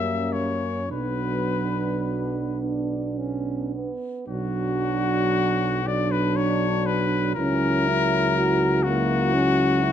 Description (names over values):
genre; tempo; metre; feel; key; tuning
classical, hymn-like piece for brass band; 34-41 BPM (dotted quarters); 6/8; rubato; B minor; A4 = 442 Hz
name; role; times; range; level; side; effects
clear cornet; melody; 0.0-9.9 s; F#4 to E5; -25 LUFS; left 7 dB; none
mellow French horn section; second line; 0.0-9.9 s; C#4 to E4; -29 LUFS; right 7 dB; none
mellow trombone; accompaniment; 0.0-9.9 s; F#3 to D4; -29 LUFS; right 4 dB; none
warm euphonium; accompaniment; 0.0-9.9 s; A#3 to F#4; -28 LUFS; left 2 dB; none
mellow tuba; bass; 0.0-9.9 s; B1 to F#2; -28 LUFS; right 1 dB; none
room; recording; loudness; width
moderate recital hall reverb, RT60 1.5 s; close, detailed microphones; -21 LUFS; side -9 dB against mid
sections
0.0-4.3 A section; 4.3-9.9 A section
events
none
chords
0.0 F#7; 0.9 Bm; 7.4 F#7/C#